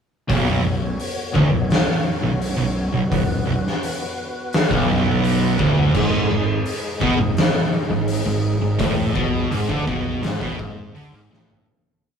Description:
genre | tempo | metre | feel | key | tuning
stoner and doom metal | 84 BPM | 4/4 | straight | unclear | A4 = 440 Hz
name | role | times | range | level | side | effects
tonewheel organ | sustained chords | 0.3-11.6 s | G#3 to C#5 | -31 LUFS | left 3 dB | overdrive, chorus vibrato, slow rotary speaker
distorted electric guitar | riff | 0.3-11.7 s | B1 to D3 | -24 LUFS | left 1 dB | distortion
thick fuzz guitar | riff | 0.3-11.7 s | B1 to D3 | -29 LUFS | left 6 dB | distortion
thick fuzz guitar | riff | 0.3-11.7 s | B1 to D3 | -22 LUFS | right 5 dB | distortion
fuzz fingered electric bass | bass | 0.3-11.6 s | B0 to D2 | -30 LUFS | left 1 dB | overdrive
oversized low-tuned drum kit | drums | 0.3-11.7 s | crash cymbal, hi-hat, kick drum, snare drum, toms | -22 LUFS | left 1 dB | none
room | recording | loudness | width
moderate stone room reverb, RT60 1.1 s | rough rehearsal-room recording, warm saturation | -18 LUFS | side -7 dB against mid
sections
0.3-11.7 riff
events
fade-out 8.8-11.7; drum fill 11.3-11.7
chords
0.3 Bm; 5.9 G#5

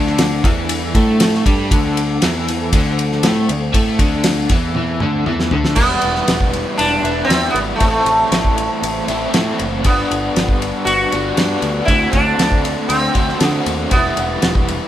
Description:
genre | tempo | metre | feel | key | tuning
psychedelic rock | 118 BPM | 4/4 | straight | unclear | A4 = 439 Hz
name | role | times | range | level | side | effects
string machine, full ensemble | sustained chords | 0.0-14.9 s | G3 to C6 | -29 LUFS | right 2 dB | none
overdriven electric guitar | riff | 0.0-14.9 s | G2 to F#4 | -20 LUFS | left 1 dB | tremolo
overdriven picked electric bass | bass | 0.0-14.8 s | E1 to D3 | -22 LUFS | equal | none
damped 70s drum kit | drums | 0.1-14.8 s | crash cymbal, kick drum, ride cymbal, snare drum, toms | -18 LUFS | equal | none
sitar | melody | 5.8-14.6 s | A3 to F#4 | -18 LUFS | right 1 dB | none
room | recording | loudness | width
moderate studio reverb, RT60 0.8 s | band playing live in one room | -14 LUFS | side -12 dB against mid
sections
0.0-5.8 A section; 5.8-14.9 B section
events
drum fill 4.8-5.8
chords
0.0 Dsus4; 5.8 Em7; 7.8 Am7; 9.8 Gmaj7; 11.9 D7; 13.9 Em7

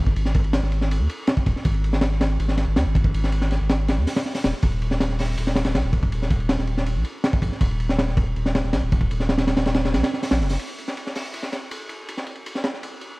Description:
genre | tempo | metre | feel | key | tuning
drum and bass, jungle | 161 BPM | 4/4 | straight | unclear | A4 = 438 Hz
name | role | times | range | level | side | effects
saturated sub bass | bass | 0.0-10.6 s | D#1 to D#2 | -23 LUFS | equal | none
crunchy breakbeat drum kit | drums | 0.1-13.1 s | hi-hat, kick drum, ride cymbal, snare drum | -22 LUFS | equal | high-pass filter on kick, high-pass filter on cymbals, high-pass filter on hats, high-pass filter on snare, high-pass filter on room
room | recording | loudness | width
little or no reverb | dark, warm production, vinyl crackle | -20 LUFS | side -24 dB against mid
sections
0.0-10.6 A section; 10.6-13.2 B section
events
none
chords
none

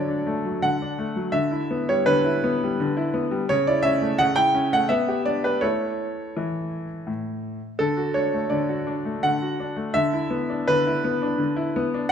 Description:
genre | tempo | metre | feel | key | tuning
classical-period piano sonatina | 84 BPM | 3/4 | rubato | unclear | A4 = 439 Hz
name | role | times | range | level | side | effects
clear grand piano | solo | 0.0-12.1 s | A2 to G5 | -21 LUFS | equal | none
room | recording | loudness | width
moderate recital hall reverb, RT60 1.7 s | none | -21 LUFS | side -8 dB against mid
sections
0.0-12.1 A section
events
none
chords
0.0 D; 1.3 Em7/D; 3.5 A/C#; 4.9 G/B; 5.6 A; 7.8 D; 10.0 E5/D

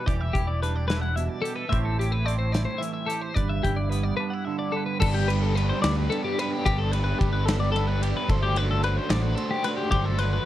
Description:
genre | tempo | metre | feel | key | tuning
math rock and midwest emo | 73 BPM (dotted quarters) | 6/8 | straight | G major | A4 = 441 Hz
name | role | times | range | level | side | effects
twangy electric guitar | accompaniment | 0.0-6.7 s | G2 to B4 | -31 LUFS | right 8 dB | analog chorus
twelve-string electric guitar | arpeggios | 0.0-10.5 s | G4 to F#5 | -29 LUFS | left 5 dB | tremolo
fingered electric bass | bass | 0.1-10.4 s | E1 to D2 | -26 LUFS | equal | none
loose indie drum kit | drums | 0.1-10.3 s | crash cymbal, hi-hat, kick drum, ride cymbal, snare drum | -30 LUFS | equal | none
biting overdriven guitar | riff | 5.0-10.5 s | D3 to C5 | -29 LUFS | right 2 dB | none
room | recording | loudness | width
light reverb | dark, warm production | -23 LUFS | side -13 dB against mid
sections
0.0-5.0 A section; 5.0-10.5 B section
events
break 4.2-5.0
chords
0.0 Em7; 1.7 Am7; 3.4 G6; 5.0 Gadd9; 8.3 D7sus4/G

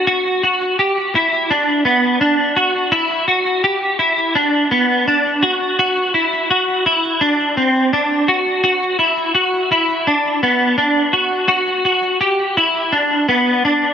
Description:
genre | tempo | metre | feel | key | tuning
dream pop | 84 BPM | 4/4 | straight | G major | A4 = 440 Hz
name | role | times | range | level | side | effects
clean electric guitar | solo | 0.0-13.9 s | B3 to G4 | -13 LUFS | equal | ensemble chorus, tape echo
room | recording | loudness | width
wet plate reverb, RT60 2.4 s | none | -13 LUFS | side -8 dB against mid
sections
0.1-13.9 A section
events
none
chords
none

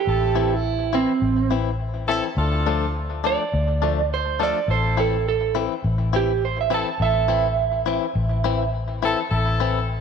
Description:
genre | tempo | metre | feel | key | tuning
blues | 104 BPM | 4/4 | swing 54% on 16ths | A minor | A4 = 442 Hz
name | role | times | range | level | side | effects
electric guitar through a small old amp | melody | 0.0-8.7 s | C4 to A5 | -22 LUFS | right 10 dB | none
warm horn section | sustained chords | 0.1-9.9 s | C4 to A4 | -27 LUFS | left 2 dB | none
vintage muted fingered electric bass | bass | 0.1-10.0 s | A1 to D2 | -24 LUFS | left 1 dB | none
direct-recorded clean electric guitar | stabs | 0.4-9.8 s | E3 to E4 | -27 LUFS | left 13 dB | spring reverb, tape echo
room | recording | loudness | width
light reverb | 1960s-style stereo with parts hard left and right | -19 LUFS | side -6 dB against mid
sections
0.0-10.0 A section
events
none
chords
0.0 Am; 2.4 Dm; 4.7 Am

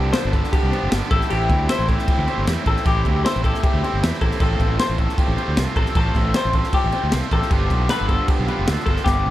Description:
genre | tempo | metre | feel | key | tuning
math rock and midwest emo | 155 BPM | 4/4 | straight | unclear | A4 = 440 Hz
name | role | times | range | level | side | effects
twelve-string electric guitar | arpeggios | 0.0-9.3 s | G4 to C5 | -24 LUFS | left 3 dB | analog delay
biting overdriven guitar | riff | 0.0-9.3 s | G2 to F4 | -26 LUFS | right 2 dB | analog delay
fuzz fingered electric bass | bass | 0.0-9.3 s | F1 to E2 | -23 LUFS | equal | overdrive
crisp fusion drum kit | drums | 0.1-9.2 s | crash cymbal, kick drum, snare drum | -21 LUFS | equal | none
room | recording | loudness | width
light reverb, studio reverb | echo-heavy mix | -17 LUFS | side -14 dB against mid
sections
0.0-9.3 A section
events
drum fill 9.1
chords
0.0 G7sus4; 1.1 Am7; 4.4 F/A; 7.5 G9

